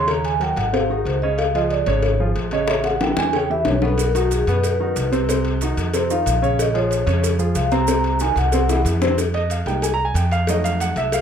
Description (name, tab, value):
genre	Afro-Cuban jazz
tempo	185 BPM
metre	4/4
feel	straight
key	unclear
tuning	A4 = 438 Hz
part	vibraphone with soft mallets	melody	0.0-8.8 s	F#4 to Bb5	-22 LUFS	equal	none
part	dark baby grand piano	accompaniment	0.0-11.2 s	B2 to Bb5	-23 LUFS	right 1 dB	none
part	upright bass	bass	0.0-11.2 s	Ab1 to F#2	-22 LUFS	equal	none
part	cowbell and bongos	percussion	0.1-11.2 s	none	-25 LUFS	left 4 dB	none
part	maracas	percussion	4.0-11.2 s	none	-33 LUFS	right 10 dB	none
room	light reverb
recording	none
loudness	-17 LUFS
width	side -8 dB against mid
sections	0.0-9.2 A section; 9.2-11.2 A section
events	vibraphone solo 0.0-9.2; drum fill 2.7-4.0, 8.7-9.2; grand piano solo 9.2-11.2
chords	0.1 Ebm7; 0.7 Ab7; 1.4 Db; 2.7 A9; 4.0 B; 5.3 Cdim; 5.9 F5; 6.6 Bbm9; 7.9 Cm7b5; 8.5 Caug; 9.2 Fm11; 10.5 F7b9